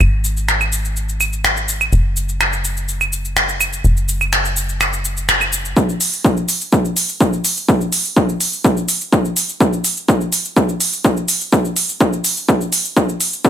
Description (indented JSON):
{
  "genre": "melodic techno",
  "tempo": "125 BPM",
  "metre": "4/4",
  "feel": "straight",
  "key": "unclear",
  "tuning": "A4 = 440 Hz",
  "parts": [
    { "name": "tight sequencer bass", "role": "bass", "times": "0.0-5.7 s", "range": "Gb1 to Ab1", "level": "-19 LUFS", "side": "equal", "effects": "sidechain pumping" },
    { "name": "techno drum kit", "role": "drums", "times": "0.0-13.5 s", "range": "claves, finger snaps, hi-hat, shaker", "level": "-17 LUFS", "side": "right 1 dB", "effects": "high-pass filter on perc, high-pass filter on snare, high-pass filter on hats, high-pass filter on room" },
    { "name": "electronic kick drum", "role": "drums", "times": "5.8-13.5 s", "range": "none", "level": "-14 LUFS", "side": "equal", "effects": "high-pass filter on kick, high-pass filter on room" }
  ],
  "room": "little or no reverb",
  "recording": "none",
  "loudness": "-14 LUFS",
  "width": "side -10 dB against mid",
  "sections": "0.0-5.8 A section; 5.8-13.5 B section",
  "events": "build-up 5.8-13.5",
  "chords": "none"
}